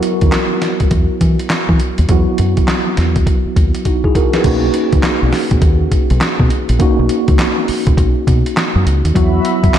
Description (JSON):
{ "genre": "R&B, new jack swing", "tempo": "102 BPM", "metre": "4/4", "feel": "swing 63% on 16ths", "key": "B major", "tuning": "A4 = 440 Hz", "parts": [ { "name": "mellow tine electric piano", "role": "accompaniment", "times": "0.0-9.8 s", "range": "F#3 to B4", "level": "-17 LUFS", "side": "equal", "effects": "medium stereo tremolo, slapback echo" }, { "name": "dusty soul sampler-style drum kit", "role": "drums", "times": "0.0-9.8 s", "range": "crash cymbal, handclaps, hi-hat, kick drum, snare drum", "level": "-15 LUFS", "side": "equal", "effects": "none" }, { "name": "deep dub fingered electric bass", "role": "bass", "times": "0.2-9.8 s", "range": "A#1 to E3", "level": "-14 LUFS", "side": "equal", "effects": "none" }, { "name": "brassy analog pad", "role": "sustained chords", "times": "9.1-9.8 s", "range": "F#4 to B5", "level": "-19 LUFS", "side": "equal", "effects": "chorus, tremolo" } ], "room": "light reverb, digital ambience", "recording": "none", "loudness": "-11 LUFS", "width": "side -10 dB against mid", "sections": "0.0-4.4 A section; 4.4-9.8 B section", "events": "drum fill 3.9-4.4", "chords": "0.0 Esus2; 4.4 Bmaj7; 9.1 Esus2" }